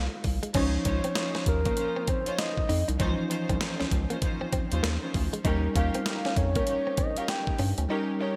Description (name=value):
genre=R&B, new jack swing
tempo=98 BPM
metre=4/4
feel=swing 62% on 16ths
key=unclear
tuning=A4 = 440 Hz
part: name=soft octave-layered synth lead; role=melody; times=0.0-8.4 s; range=Bb4 to G5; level=-34 LUFS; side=equal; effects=chorus
part: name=bell-like tine electric piano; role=accompaniment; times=0.0-8.4 s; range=E3 to Db5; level=-36 LUFS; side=equal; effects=none
part: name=direct-recorded clean electric guitar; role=riff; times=0.0-8.2 s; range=Ab3 to Eb4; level=-39 LUFS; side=equal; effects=analog chorus
part: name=round analog bass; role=bass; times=0.0-7.9 s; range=C2 to G2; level=-31 LUFS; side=equal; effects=none
part: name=breakbeat sampler-style drum kit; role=drums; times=0.2-7.9 s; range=crash cymbal, hi-hat, kick drum, snare drum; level=-32 LUFS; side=equal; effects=gated reverb
part: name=warm studio string section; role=stabs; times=0.5-8.4 s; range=Db4 to C5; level=-38 LUFS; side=equal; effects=none
room=moderate lush hall reverb, RT60 1.9 s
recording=bright 1980s-style digital production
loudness=-28 LUFS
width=mono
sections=0.5-8.4 A section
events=none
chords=0.0 Ab6; 0.5 Dbmaj9; 5.4 Eb7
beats=| 0.55 1.16 1.77 2.38 | 3.00 3.61 4.22 4.83 | 5.45 6.06 6.67 7.28 | 7.89